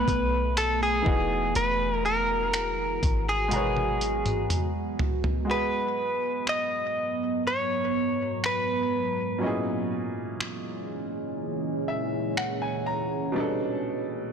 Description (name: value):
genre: contemporary R&B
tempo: 61 BPM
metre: 4/4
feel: straight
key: G# minor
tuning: A4 = 438 Hz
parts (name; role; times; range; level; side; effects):
- direct-recorded clean electric guitar; melody; 0.0-12.8 s; G#4 to D#5; -27 LUFS; equal; ping-pong delay
- clear grand piano; accompaniment; 0.0-14.3 s; A#2 to A#5; -33 LUFS; equal; none
- deep dark ambient pad; sustained chords; 0.0-14.3 s; G#2 to A#5; -31 LUFS; right 2 dB; chorus, built-in reverb
- warm 808-style bass; bass; 0.0-4.5 s; E1 to B1; -31 LUFS; equal; none
- dusty soul sampler-style drum kit; drums; 0.1-12.6 s; finger snaps, hi-hat, kick drum, toms; -29 LUFS; equal; soft clipping on snare
room: light reverb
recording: blown-out, overdriven recording, overdrive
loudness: -25 LUFS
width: side -7 dB against mid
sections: 0.0-5.5 A section; 5.5-14.3 B section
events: drum fill 3.5-5.5; grand piano fill 11.4-13.4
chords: 0.0 B7alt; 1.1 Emaj9#11; 3.5 G#m11; 5.5 G#m9; 9.4 F#13/A#; 13.4 B7alt